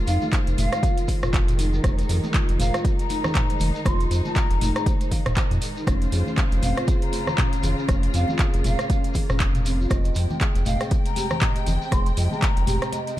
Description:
afro house; 119 BPM; 4/4; swing 57% on 16ths; F minor; A4 = 439 Hz
clear studio string section; sustained chords; 0.0-13.2 s; C3 to G5; -32 LUFS; right 1 dB; sidechain pumping
round analog bass; bass; 0.0-12.8 s; Eb1 to F2; -23 LUFS; equal; tube saturation, sidechain pumping
breathy mellow jazz flute; melody; 0.1-13.0 s; F5 to C6; -31 LUFS; left 2 dB; ping-pong delay
marimba with soft mallets; arpeggios; 0.1-13.2 s; C4 to F5; -31 LUFS; equal; sidechain pumping, ping-pong delay
afro-pop drum kit; drums; 0.1-13.2 s; handclaps, hi-hat, rim click, toms; -29 LUFS; right 1 dB; small room ambience
shekere; percussion; 0.1-13.2 s; -39 LUFS; right 3 dB
congas; percussion; 0.2-13.2 s; -32 LUFS; equal
electronic kick drum; drums; 0.3-12.5 s; -23 LUFS; equal; overdrive, small room ambience
small room ambience; dark, warm production; -20 LUFS; side -14 dB against mid
0.0-13.2 A section
break 12.9
0.0 Fm7; 5.9 Dbmaj7/F; 9.9 Abmaj7/F
0.33 0.83 1.33 | 1.84 2.34 2.85 3.35 | 3.85 4.36 4.86 5.37 | 5.87 6.38 6.88 7.38 | 7.89 8.39 8.90 9.40 | 9.90 10.41 10.91 11.42 | 11.92 12.43 12.93

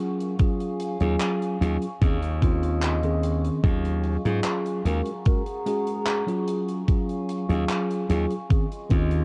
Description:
vaporwave; 74 BPM; 4/4; straight; Eb dorian; A4 = 440 Hz
mellow tine electric piano; accompaniment; 0.0-9.2 s; Eb3 to Bb4; -29 LUFS; equal; subtle chorus, vintage 12-bit sampler grit, analog delay
warbly tape-like pad; sustained chords; 0.0-9.2 s; Gb3 to Db6; -37 LUFS; equal; chorus, built-in reverb
tight metal drum kit; drums; 0.2-9.2 s; handclaps, hi-hat; -36 LUFS; equal; vintage 12-bit sampler grit
electronic kick drum; drums; 0.4-9.1 s; -24 LUFS; equal; vintage 12-bit sampler grit
glassy slap bass; bass; 1.0-9.2 s; Eb2 to Ab2; -27 LUFS; equal; tube saturation
little or no reverb; dark, warm production, cassette tape; -25 LUFS; mono
0.0-9.2 A section
0.0 Ebm11; 2.0 Eb13sus4; 3.6 Ebm11; 4.9 Ab9sus4/Eb; 6.5 Ebm11; 8.5 Eb13sus4
| 0.40 1.21 2.02 2.83 | 3.64 4.45 5.26 6.07 | 6.88 7.69 8.50

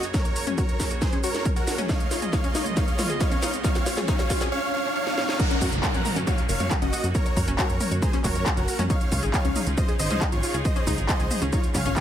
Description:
uplifting trance; 137 BPM; 4/4; straight; A4 = 437 Hz
big supersaw lead; melody; 0.0-12.0 s; F4 to Gb5; -30 LUFS; right 1 dB; sidechain pumping, ping-pong delay
bright chamber string section; sustained chords; 0.0-12.0 s; Db2 to Eb5; -35 LUFS; right 2 dB; sidechain pumping
techno drum kit; drums; 0.0-12.0 s; crash cymbal, handclaps, hi-hat, shaker, snare drum, toms; -29 LUFS; equal; overdrive
riser and downlifter; sound effects; 0.4-8.9 s; -33 LUFS; equal
analog pluck; arpeggios; 0.1-11.9 s; Db4 to Bb5; -32 LUFS; left 4 dB; chorus, sidechain pumping, ping-pong delay
electronic kick drum; drums; 0.1-12.0 s; -25 LUFS; equal; overdrive
plucky analog bass; bass; 5.6-11.9 s; Gb1 to Gb2; -28 LUFS; equal; sidechain pumping
light reverb, digital ambience; -22 LUFS; side -10 dB against mid
0.0-5.4 A section; 5.4-12.0 B section
build-up 0.0-5.4; drum fill 0.0-4.5, 5.1-5.4; riser 0.4-5.4; drop 5.4-12.0
0.0 Gb; 1.9 Dbadd9; 5.4 Gb; 8.9 Dbadd9
| 0.14 0.58 1.02 1.45 | 1.89 2.33 2.77 3.21 | 3.64 4.08 4.52 4.96 | 5.40 5.83 6.27 6.71 | 7.15 7.58 8.02 8.46 | 8.90 9.34 9.78 10.21 | 10.65 11.09 11.53 11.96

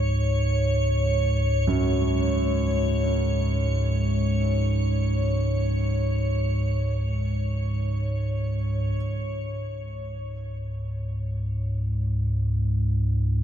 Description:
dark ambient drone; free time; A4 = 440 Hz
deep rumbling drone; drone; 0.0-13.4 s; C#2 to G#2; -24 LUFS; equal; built-in reverb
icy glass pad; texture; 0.0-9.0 s; C#5; -31 LUFS; equal; chorus, built-in reverb
clear concert grand piano; arpeggios; 1.7-9.0 s; F#2; -31 LUFS; right 2 dB; diffuse ambient delay
moderate cathedral reverb, RT60 6.1 s; dark, warm production; -23 LUFS; side -9 dB against mid
0.0-9.0 A section; 9.0-13.4 B section
0.0 C#5
free time

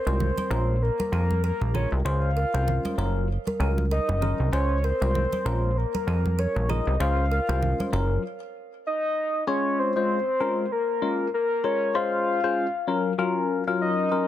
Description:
afrobeats; 97 BPM; 4/4; swing 58% on 16ths; Db major; A4 = 440 Hz
soft octave-layered synth lead; melody; 0.0-14.3 s; Bb4 to F5; -28 LUFS; left 1 dB; chorus, ping-pong delay
barky tine electric piano; accompaniment; 0.1-14.3 s; Gb3 to Db5; -27 LUFS; left 4 dB; phaser
kalimba; riff; 0.1-8.0 s; Ab4 to Db5; -34 LUFS; right 2 dB; ping-pong delay
plucky analog bass; bass; 0.1-8.2 s; Gb1 to F2; -24 LUFS; equal
congas; percussion; 0.2-7.9 s; -34 LUFS; right 2 dB
light reverb; dense, heavily limited modern master; -22 LUFS; side -12 dB against mid
0.0-9.5 A section; 9.5-14.3 B section
stop 8.2-9.5
0.0 Dbmaj7; 0.5 Bbm7; 2.0 Dbmaj7; 3.0 Gbmaj7; 4.5 Dbmaj7; 5.5 Bbm7; 7.0 Dbmaj7; 7.9 Gbmaj7; 9.5 Dbmaj7; 10.4 Bbm7; 11.9 Dbmaj7; 12.9 Gbmaj7
0.20 0.81 1.43 | 2.05 2.67 3.29 3.91 | 4.53 5.14 5.76 6.38 | 7.00 7.62 8.24 8.85 | 9.47 10.09 10.71 11.33 | 11.95 12.57 13.18 13.80

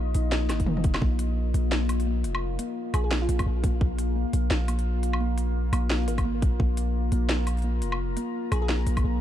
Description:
half-time drum and bass; 172 BPM; 4/4; swing 60% on 16ths, half-time; A4 = 444 Hz
deep dark ambient pad; sustained chords; 0.0-9.2 s; Bb3 to Bb5; -33 LUFS; left 1 dB; chorus, built-in reverb, sidechain pumping
kalimba; arpeggios; 0.0-9.2 s; Bb3 to Bb4; -36 LUFS; left 1 dB; vintage 12-bit sampler grit, ping-pong delay
long sustained 808-style bass; bass; 0.0-9.2 s; F1 to Bb1; -26 LUFS; equal
drum and bass drum kit; drums; 0.1-9.0 s; hi-hat, snare drum, toms, woodblock; -31 LUFS; equal; small room ambience
electronic kick drum; drums; 0.6-1.1, 3.4-3.9, 6.2-6.7, 9.0 s; -25 LUFS; equal; small room ambience
glassy wavetable pluck; melody; 2.9-3.6, 8.5-8.7 s; F4 to Ab4; -36 LUFS; right 2 dB; chorus, ping-pong delay
little or no reverb; dark, warm production; -24 LUFS; side -11 dB against mid
0.0-1.0 A section; 1.0-9.2 A section
drop 0.0-1.0, 1.0-9.2; drum fill 0.5-1.0
0.0 Bb5
0.32 0.67 | 1.02 1.37 1.72 2.07 | 2.42 2.76 3.11 3.46 | 3.81 4.16 4.51 4.86 | 5.21 5.55 5.90 6.25 | 6.60 6.95 7.30 7.65 | 8.00 8.35 8.70 9.04

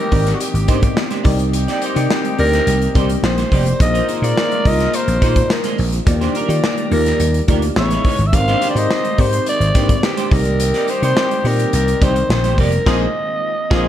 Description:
polished 1980s jazz-funk pop; 106 BPM; 4/4; straight; A4 = 440 Hz
growling alto saxophone; melody; 0.0-13.9 s; Gb4 to F5; -20 LUFS; equal
mellow horn section; second line; 0.0-13.9 s; G3 to E5; -26 LUFS; left 2 dB
bell-like FM electric piano; accompaniment; 0.0-13.9 s; Bb3 to Eb5; -23 LUFS; left 3 dB; analog chorus
soft string machine; sustained chords; 0.0-13.9 s; C#3 to D#5; -29 LUFS; equal
vintage slap bass; bass; 0.1-13.9 s; F1 to Eb3; -18 LUFS; equal
modern studio drum kit; drums; 0.1-13.9 s; crash cymbal, hi-hat, kick drum, snare drum; -19 LUFS; equal
clean electric guitar; riff; 0.3-13.9 s; G#3 to D5; -27 LUFS; right 5 dB; analog chorus
light reverb, small room ambience; dark, warm production; -14 LUFS; side -11 dB against mid
0.0-13.9 A section
band accent 12.9-13.9
0.0 Abmaj9#11; 1.3 Cm7; 3.8 Bb9sus4; 6.1 Ebmaj7; 7.8 Amaj9#11; 8.3 Abmaj9#11; 10.3 Cm7; 12.9 Bb9sus4
0.40 0.97 | 1.54 2.10 2.67 3.24 | 3.81 4.37 4.94 5.50 | 6.07 6.64 7.20 7.77 | 8.34 8.90 9.47 10.03 | 10.60 11.16 11.73 12.29 | 12.86 13.42

